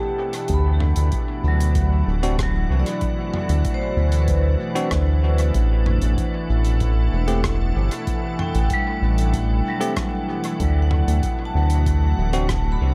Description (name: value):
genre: ambient dub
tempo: 95 BPM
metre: 4/4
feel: straight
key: unclear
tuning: A4 = 444 Hz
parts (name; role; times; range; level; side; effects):
- soft additive organ-like pad; sustained chords; 0.0-12.9 s; B2 to A4; -32 LUFS; equal; ensemble chorus, built-in reverb
- vibraphone with hard mallets; arpeggios; 0.0-12.9 s; F#3 to B5; -31 LUFS; equal; dub echo
- drifting glass-harmonics texture; texture; 0.0-12.9 s; E4 to F#5; -36 LUFS; equal; chorus, built-in reverb
- modern studio drum kit; drums; 0.3-12.6 s; hi-hat, rim click, toms; -35 LUFS; equal; dub echo
- round analog bass; bass; 0.5-12.9 s; D1 to D2; -21 LUFS; equal; tube saturation
- electronic kick drum; drums; 0.5-12.6 s; none; -29 LUFS; equal; none
- bell-like tine electric piano; stabs; 2.2-12.5 s; A3 to G4; -32 LUFS; equal; vintage 12-bit sampler grit, dub echo
room: small room ambience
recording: echo-heavy mix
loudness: -21 LUFS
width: mono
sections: 0.0-12.9 A section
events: none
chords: 0.5 D7; 5.5 A7(no3); 10.6 D